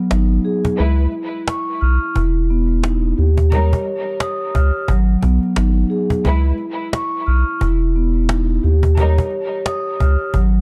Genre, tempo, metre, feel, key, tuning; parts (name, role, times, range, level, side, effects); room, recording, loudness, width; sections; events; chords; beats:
hip hop, boom-bap hip-hop; 88 BPM; 4/4; swing 60% on 16ths; A4 = 440 Hz
vibraphone with soft mallets; accompaniment; 0.0-10.6 s; F#3 to F6; -23 LUFS; equal; high-pass filter, low-pass filter
round analog bass; bass; 0.1-10.6 s; E1 to D#2; -17 LUFS; equal
cajon; drums; 0.1-10.5 s; -24 LUFS; equal
warm studio string section; stabs; 0.8-9.3 s; G3 to B4; -29 LUFS; equal; high-pass filter, low-pass filter, digital delay
small room ambience; dark, warm production; -18 LUFS; mono
0.0-10.6 A section
0.0 G#m7; 0.8 C#m7; 2.2 E5; 3.2 D#7; 4.9 G#m7; 6.2 C#m7; 7.6 E5; 8.6 D#7
0.11 0.79 1.47 | 2.16 2.84 3.52 4.20 | 4.88 5.57 6.25 6.93 | 7.61 8.29 8.97 9.66 | 10.34